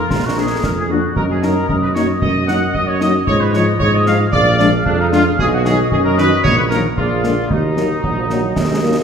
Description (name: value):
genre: military-style march for wind band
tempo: 114 BPM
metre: 2/4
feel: straight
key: Eb minor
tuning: A4 = 440 Hz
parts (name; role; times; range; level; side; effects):
- clear trumpet section; melody; 0.0-9.0 s; D4 to Gb5; -19 LUFS; equal; none
- mellow woodwind section; second line; 0.0-9.0 s; F4 to F5; -21 LUFS; equal; none
- warm tuba; bass; 0.1-9.0 s; Bb1 to Ab2; -18 LUFS; right 2 dB; none
- concert snare drum and concert bass drum; drums; 0.1-9.0 s; none; -23 LUFS; equal; none
- dark French horn section; accompaniment; 0.4-8.9 s; D3 to Eb4; -21 LUFS; left 3 dB; none
- warm euphonium; second line; 8.0-9.0 s; F3 to Bb3; -21 LUFS; right 4 dB; none
room: wet recital hall reverb, RT60 1.5 s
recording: recorded in a church or concert hall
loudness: -13 LUFS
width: side -7 dB against mid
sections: 0.0-9.0 A section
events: none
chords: 0.1 Bb; 1.2 Ebm/Gb; 3.3 Ab5; 4.3 Bb7; 5.4 B; 6.4 Ebm/Bb; 7.0 Bb7; 7.5 Ebm